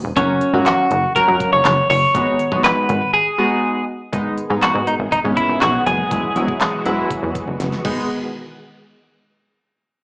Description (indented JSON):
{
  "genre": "dance-pop",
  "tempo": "121 BPM",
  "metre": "4/4",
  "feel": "straight",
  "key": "G# minor",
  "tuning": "A4 = 440 Hz",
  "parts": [
    { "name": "plucky analog bass", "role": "bass", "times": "0.0-8.1 s", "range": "E1 to G#2", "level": "-22 LUFS", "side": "equal", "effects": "sidechain pumping" },
    { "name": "twelve-string electric guitar", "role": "melody", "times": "0.2-7.6 s", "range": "C#4 to C#5", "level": "-17 LUFS", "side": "equal", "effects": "slapback echo" },
    { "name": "chorused retro synth keys", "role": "accompaniment", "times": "0.2-8.1 s", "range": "F#3 to F#4", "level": "-21 LUFS", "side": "equal", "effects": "sidechain pumping, slapback echo" },
    { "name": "pop drum kit", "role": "drums", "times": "0.2-8.0 s", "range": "crash cymbal, handclaps, hi-hat, kick drum, snare drum", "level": "-22 LUFS", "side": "equal", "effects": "slapback echo" },
    { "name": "string machine, cellos", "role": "sustained chords", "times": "4.1-8.1 s", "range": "D#3 to G#4", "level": "-28 LUFS", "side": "equal", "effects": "phaser, ensemble chorus, sidechain pumping" }
  ],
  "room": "moderate club reverb, RT60 0.6 s",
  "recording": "live gig heard through the venue's PA, club reverb, small speaker sound",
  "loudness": "-15 LUFS",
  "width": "side -36 dB against mid",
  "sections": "0.0-4.1 A section; 4.1-8.1 B section; 8.1-10.0 C section",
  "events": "silent gap 3.1-4.1; drum fill 7.6-8.1",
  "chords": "0.2 F#; 2.1 G#m7; 4.1 G#m; 6.1 Eadd9; 7.8 G#m; 8.1 N.C."
}